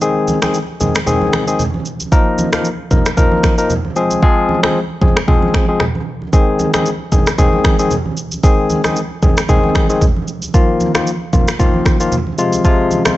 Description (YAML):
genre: afrobeats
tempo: 114 BPM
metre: 4/4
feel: swing 55% on 16ths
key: Ab major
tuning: A4 = 440 Hz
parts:
  - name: barky tine electric piano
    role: accompaniment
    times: 0.0-13.2 s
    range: C3 to Bb4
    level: -15 LUFS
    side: left 2 dB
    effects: none
  - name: afro-pop drum kit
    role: drums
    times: 0.0-13.2 s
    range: finger snaps, kick drum, rim click, shaker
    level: -14 LUFS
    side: equal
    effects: vintage 12-bit sampler grit
  - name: congas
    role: percussion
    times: 0.3-13.2 s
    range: none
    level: -21 LUFS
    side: right 3 dB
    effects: none
room: light reverb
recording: nothing above 8.0 kHz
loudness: -12 LUFS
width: side -16 dB against mid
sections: 0.0-13.2 A section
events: hi-hats muted 4.2-6.3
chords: 0.0 Ab; 2.1 Ebsus2; 4.0 Fm; 6.3 Ab; 10.5 Ebsus2; 12.4 Fm